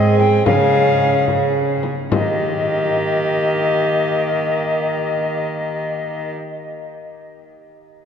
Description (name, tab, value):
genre	classical, renaissance-style consort dance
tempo	70-77 BPM (dotted quarters)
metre	6/8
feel	straight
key	Eb mixolydian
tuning	A4 = 441 Hz
part	mellow alto recorder	melody	0.0-6.3 s	Eb5 to G5	-21 LUFS	left 4 dB	none
part	rich viola	second line	0.0-6.3 s	G4 to Ab4	-22 LUFS	right 4 dB	none
part	warm bassoon	accompaniment	0.0-6.3 s	Bb3 to Db4	-25 LUFS	left 1 dB	none
part	rich cello	bass	0.0-6.3 s	Ab2 to Eb3	-22 LUFS	equal	none
part	frame drum	percussion	0.2-2.4 s	none	-24 LUFS	left 3 dB	none
room	wet cathedral reverb, RT60 5.0 s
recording	dark, warm production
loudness	-16 LUFS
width	side -7 dB against mid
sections	0.0-2.1 A section; 2.1-5.6 B section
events	slowing down 0.0-2.1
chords	0.5 Db; 2.1 Eb